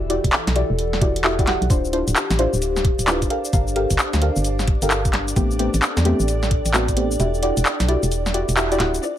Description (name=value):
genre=UK garage, two-step garage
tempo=131 BPM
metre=4/4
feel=swing 64% on 16ths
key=unclear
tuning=A4 = 440 Hz
part: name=soft string machine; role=sustained chords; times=0.0-9.2 s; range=E3 to E6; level=-33 LUFS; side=left 1 dB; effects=ensemble chorus, sidechain pumping
part: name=organ-like FM bass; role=bass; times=0.0-9.0 s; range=D1 to E2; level=-22 LUFS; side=equal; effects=sidechain pumping
part: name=warbly tape-like pad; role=texture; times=0.0-9.2 s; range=D4 to G5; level=-28 LUFS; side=equal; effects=chorus, built-in reverb, sidechain pumping
part: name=deep mellow chord stab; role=stabs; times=0.1-9.2 s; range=A3 to F#5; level=-23 LUFS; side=equal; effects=chorus, dub echo
part: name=garage drum kit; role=drums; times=0.1-9.1 s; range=cabasa, handclaps, hi-hat, snare drum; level=-22 LUFS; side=equal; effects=none
part: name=electronic kick drum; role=drums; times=0.2-7.0 s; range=none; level=-21 LUFS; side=equal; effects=none
part: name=warm studio violin section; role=melody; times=9.0-9.2 s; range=D5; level=-27 LUFS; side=left 6 dB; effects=none
room=light reverb, digital ambience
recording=vinyl crackle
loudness=-17 LUFS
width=side -11 dB against mid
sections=0.0-9.0 A section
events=kick drops out 7.2-9.0; band accent 8.6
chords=0.0 Em9; 1.7 Dm9; 3.3 Gm9; 5.4 Am9; 7.2 Em9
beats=0.33 0.78 1.24 | 1.70 2.16 2.62 3.07 | 3.53 3.99 4.45 4.91 | 5.36 5.82 6.28 6.74 | 7.20 7.65 8.11 8.57 | 9.03